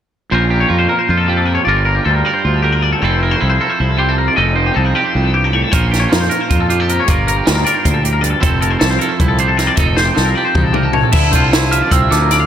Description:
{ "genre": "math rock and midwest emo", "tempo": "310 BPM (eighths)", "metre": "7/8", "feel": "straight", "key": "F major", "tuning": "A4 = 441 Hz", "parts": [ { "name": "twangy electric guitar", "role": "accompaniment", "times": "0.3-12.5 s", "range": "F2 to C5", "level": "-18 LUFS", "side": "right 6 dB", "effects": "slapback echo" }, { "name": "twangy electric guitar", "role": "arpeggios", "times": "0.3-12.5 s", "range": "G4 to F5", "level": "-18 LUFS", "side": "left 5 dB", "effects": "lush chorus, digital delay" }, { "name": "fuzz fingered electric bass", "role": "bass", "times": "0.3-12.4 s", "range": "F1 to F2", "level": "-16 LUFS", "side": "equal", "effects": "overdrive" }, { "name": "compact cocktail drum kit", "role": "drums", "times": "5.7-12.4 s", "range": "crash cymbal, hi-hat, kick drum, snare drum, toms", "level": "-16 LUFS", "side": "equal", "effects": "none" }, { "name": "glockenspiel with rubber mallets", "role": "melody", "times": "10.9-12.5 s", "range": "A5 to F6", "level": "-18 LUFS", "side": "equal", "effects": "none" } ], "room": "light reverb, studio ambience", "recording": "none", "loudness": "-12 LUFS", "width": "side -9 dB against mid", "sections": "0.3-11.1 A section; 11.1-12.5 B section", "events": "drum fill 10.0-11.1", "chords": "0.3 Bbmadd9; 1.7 Gm7; 3.0 Fmaj7; 4.4 F7b13; 5.7 Bbmadd9; 7.1 Gm7; 8.4 Fmaj7; 9.8 F7; 11.1 Dm9" }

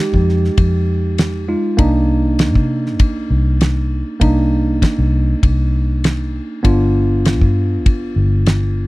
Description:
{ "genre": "straight-eighth soul blues", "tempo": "99 BPM", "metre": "4/4", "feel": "swing 54% on 16ths", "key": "C minor", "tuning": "A4 = 436 Hz", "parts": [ { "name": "tine electric piano", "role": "accompaniment", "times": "0.0-8.9 s", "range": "Ab3 to G4", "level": "-19 LUFS", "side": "right 1 dB", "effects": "none" }, { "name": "vintage muted fingered electric bass", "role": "bass", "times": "0.1-8.9 s", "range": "G1 to C3", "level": "-16 LUFS", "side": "equal", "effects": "none" }, { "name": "damped 70s drum kit", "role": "drums", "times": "0.1-8.6 s", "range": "kick drum, ride cymbal, snare drum", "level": "-14 LUFS", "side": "equal", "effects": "none" } ], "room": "little or no reverb", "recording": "dry, close 1970s-style studio recording", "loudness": "-13 LUFS", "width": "side -20 dB against mid", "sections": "0.0-8.9 A section", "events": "none", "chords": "0.0 Fm7; 1.8 Cm7; 6.6 G7" }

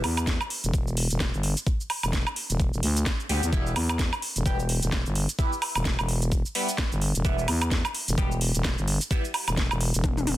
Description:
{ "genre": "bass house", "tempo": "129 BPM", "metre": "4/4", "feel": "swing 58% on 16ths", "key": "E minor", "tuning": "A4 = 440 Hz", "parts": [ { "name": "growling FM bass", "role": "bass", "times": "0.0-10.4 s", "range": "E1 to E2", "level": "-26 LUFS", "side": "equal", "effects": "overdrive, sidechain pumping" }, { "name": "garage drum kit", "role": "drums", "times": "0.0-10.4 s", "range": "hi-hat, shaker, snare drum, toms, woodblock", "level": "-28 LUFS", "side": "right 1 dB", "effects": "none" }, { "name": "electronic kick drum", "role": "drums", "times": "0.3-10.1 s", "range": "none", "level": "-26 LUFS", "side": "equal", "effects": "none" }, { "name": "band-passed chord stab", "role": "stabs", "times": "3.3-9.2 s", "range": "G3 to G4", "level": "-33 LUFS", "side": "equal", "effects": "phaser, wide subtle chorus, sidechain pumping, digital delay" } ], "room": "little or no reverb", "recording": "dense, heavily limited modern master", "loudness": "-24 LUFS", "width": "side -15 dB against mid", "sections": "0.0-10.4 A section", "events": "drum fill 10.0-10.4", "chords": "0.0 Em" }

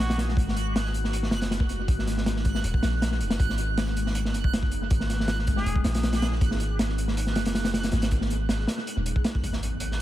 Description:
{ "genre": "drum and bass, jungle", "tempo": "159 BPM", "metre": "4/4", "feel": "straight", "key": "G# minor", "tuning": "A4 = 440 Hz", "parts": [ { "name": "trumpet with plunger mute", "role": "melody", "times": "0.0-0.2, 5.6-5.8 s", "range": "F#4 to G#4", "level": "-38 LUFS", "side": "equal", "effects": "dub echo" }, { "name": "ethereal airy pad", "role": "sustained chords", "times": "0.0-10.0 s", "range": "G#3 to G#4", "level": "-35 LUFS", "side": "equal", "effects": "ensemble chorus, built-in reverb, phaser" }, { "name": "long sustained 808-style bass", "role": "bass", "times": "0.0-10.0 s", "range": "D#1 to A#1", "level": "-28 LUFS", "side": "equal", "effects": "tube saturation" }, { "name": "crunchy breakbeat drum kit", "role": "drums", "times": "0.0-10.0 s", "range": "hi-hat, kick drum, snare drum", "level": "-26 LUFS", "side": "equal", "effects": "high-pass filter on kick, high-pass filter on hats, high-pass filter on snare, high-pass filter on room, tape echo" }, { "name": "backwards swelling texture", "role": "texture", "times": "0.0-9.4 s", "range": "F#6", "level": "-36 LUFS", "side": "right 4 dB", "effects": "built-in reverb" }, { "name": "impact", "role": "sound effects", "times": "9.4-10.0 s", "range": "none", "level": "-34 LUFS", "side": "left 1 dB", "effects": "none" } ], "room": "small room reverb", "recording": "echo-heavy mix", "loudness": "-23 LUFS", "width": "side -14 dB against mid", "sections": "0.0-9.4 A section", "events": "impact 9.4-10.0", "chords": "0.0 G#m7" }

